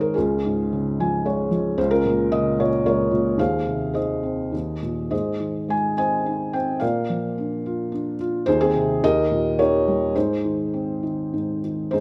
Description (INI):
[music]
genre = classical, lyrical solo piano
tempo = 96-115 BPM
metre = 3/4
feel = rubato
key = Ab major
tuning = A4 = 440 Hz
[part]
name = felt-muted upright piano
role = solo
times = 0.0-12.0 s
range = Db2 to Ab5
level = -23 LUFS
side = equal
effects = none
[sound]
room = moderate recital hall reverb, RT60 1.6 s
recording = none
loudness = -23 LUFS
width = mono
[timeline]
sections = 0.0-11.9 A section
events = felt piano fill 0.7-1.8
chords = 0.2 Db; 1.8 Bbm/Db; 3.4 Ab/Eb; 4.5 Eb5; 5.1 Ab; 6.8 Bb; 8.5 Ab/Eb; 9.0 Eb7; 10.2 Ab